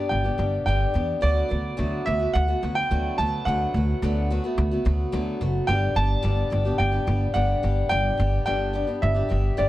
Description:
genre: folk rock and heartland rock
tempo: 108 BPM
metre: 4/4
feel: straight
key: D major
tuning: A4 = 437 Hz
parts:
  - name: clear concert grand piano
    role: melody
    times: 0.0-9.7 s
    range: D5 to A5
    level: -27 LUFS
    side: right 2 dB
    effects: none
  - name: picked acoustic archtop guitar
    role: accompaniment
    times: 0.0-9.7 s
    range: G2 to G4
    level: -27 LUFS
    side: left 2 dB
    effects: none
  - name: upright bass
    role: bass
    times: 0.1-9.7 s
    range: F#1 to E2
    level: -24 LUFS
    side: equal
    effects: none
room: light reverb, small room ambience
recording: dark, warm production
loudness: -21 LUFS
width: side -15 dB against mid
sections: 0.0-9.7 A section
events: none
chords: 0.0 G; 1.2 D6; 5.7 G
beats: 0.10 0.66 | 1.22 1.78 2.34 2.90 | 3.46 4.01 4.57 5.13 | 5.69 6.24 6.80 7.36 | 7.91 8.47 9.03 9.59

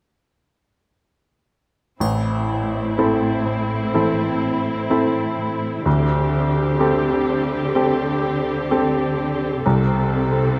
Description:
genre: cinematic, emotional film score for orchestra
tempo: 63 BPM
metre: 4/4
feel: rubato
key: A minor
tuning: A4 = 439 Hz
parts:
  - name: bright baby grand piano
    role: accompaniment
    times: 2.0-10.6 s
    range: A1 to A4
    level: -23 LUFS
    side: equal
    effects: none
  - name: rich studio viola section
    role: accompaniment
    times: 2.0-10.6 s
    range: C4 to A4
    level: -27 LUFS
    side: equal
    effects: none
  - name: concert harp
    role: arpeggios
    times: 2.0-10.6 s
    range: A2 to A4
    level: -29 LUFS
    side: equal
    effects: none
  - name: warm studio cello section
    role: bass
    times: 2.0-10.6 s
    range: A2 to D3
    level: -27 LUFS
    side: equal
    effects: none
  - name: triangle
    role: percussion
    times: 2.0-3.9 s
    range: none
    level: -42 LUFS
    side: equal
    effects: none
room: light reverb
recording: close, detailed microphones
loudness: -20 LUFS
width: mono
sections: 2.0-10.6 A section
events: none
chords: 2.0 Am; 5.9 D7sus4; 9.6 Am/C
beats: | 2.01 2.99 3.95 4.90 | 5.86 6.80 7.75 8.70 | 9.65 10.59

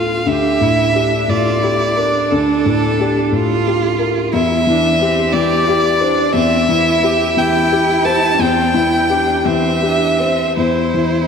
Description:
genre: neoclassical piano and strings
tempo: 59 BPM (dotted quarters)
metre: 6/8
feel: rubato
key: unclear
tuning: A4 = 439 Hz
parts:
  - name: rich violin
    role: melody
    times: 0.0-11.3 s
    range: A4 to A5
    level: -16 LUFS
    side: equal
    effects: ping-pong delay
  - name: rich cello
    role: second line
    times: 0.0-11.3 s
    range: C4 to G4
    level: -20 LUFS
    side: right 7 dB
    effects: none
  - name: dark baby grand piano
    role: accompaniment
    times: 0.0-11.3 s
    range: D2 to C5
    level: -16 LUFS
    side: left 3 dB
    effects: none
room: wet lush hall reverb, RT60 2.6 s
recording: dreamy mix soaked in reverb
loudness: -12 LUFS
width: side -6 dB against mid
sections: 0.0-11.3 A section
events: none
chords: 0.3 Gmadd9/D; 4.3 C/E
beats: | 0.28 1.30 | 2.32 3.33 | 4.34 5.34 | 6.35 7.37 | 8.40 9.46 | 10.57

